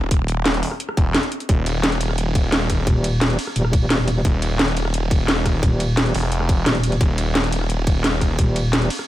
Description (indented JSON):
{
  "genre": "dark technical drum and bass",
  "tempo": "174 BPM",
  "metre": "4/4",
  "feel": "straight",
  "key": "unclear",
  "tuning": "A4 = 443 Hz",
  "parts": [
    { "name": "snarling distorted saw bass", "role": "bass", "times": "0.0-8.4 s", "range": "Eb1 to Fb1", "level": "-22 LUFS", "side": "equal", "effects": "distortion, overdrive, sidechain pumping" },
    { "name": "drum and bass drum kit", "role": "drums", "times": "0.1-9.1 s", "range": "hi-hat, ride cymbal, rim click, snare drum", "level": "-22 LUFS", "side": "equal", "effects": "none" },
    { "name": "electronic kick drum", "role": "drums", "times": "0.1-8.5 s", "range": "none", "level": "-18 LUFS", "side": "equal", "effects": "none" },
    { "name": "metallic wobble bass", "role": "bass", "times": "2.9-8.9 s", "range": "Eb1", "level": "-19 LUFS", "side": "equal", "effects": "chorus, tube saturation" }
  ],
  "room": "light reverb",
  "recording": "none",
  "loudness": "-17 LUFS",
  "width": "side -14 dB against mid",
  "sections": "0.0-9.1 A section",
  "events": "none",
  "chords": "none"
}